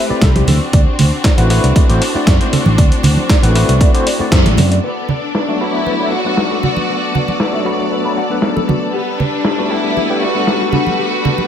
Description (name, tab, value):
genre	nu-disco, nu disco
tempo	117 BPM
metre	4/4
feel	straight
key	unclear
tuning	A4 = 440 Hz
part	rich studio string section	sustained chords	0.0-11.5 s	G3 to D5	-22 LUFS	left 1 dB	sidechain pumping
part	mellow electric guitar	riff	0.0-11.1 s	D4 to D6	-24 LUFS	left 2 dB	lush chorus, low-pass filter, analog delay
part	overdriven tine electric piano	accompaniment	0.1-11.5 s	F#3 to D5	-20 LUFS	left 2 dB	fast tremolo, vintage 12-bit sampler grit, sidechain pumping, low-pass filter, analog delay
part	fingered electric bass	bass	0.1-4.8 s	A1 to F#2	-14 LUFS	equal	none
part	dusty soul sampler-style drum kit	drums	0.2-11.5 s	hi-hat, shaker, snare drum	-20 LUFS	equal	low-pass filter on hats, low-pass filter on snare, low-pass filter on perc, low-pass filter on room
part	electronic kick drum	drums	0.2-4.4 s	none	-12 LUFS	equal	overdrive
part	congas	percussion	0.4-11.5 s	none	-18 LUFS	right 3 dB	none
part	warm symphonic violin section	melody	4.8-11.5 s	B3 to F#4	-19 LUFS	left 2 dB	ping-pong delay
room	moderate plate reverb, RT60 1.4 s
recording	dreamy mix soaked in reverb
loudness	-12 LUFS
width	side -9 dB against mid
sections	0.0-4.8 A section; 4.8-11.5 B section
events	band accent 4.3; filter sweep on clean electric guitar 4.8-11.5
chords	0.5 D13; 4.8 Bm7; 8.9 Gmaj9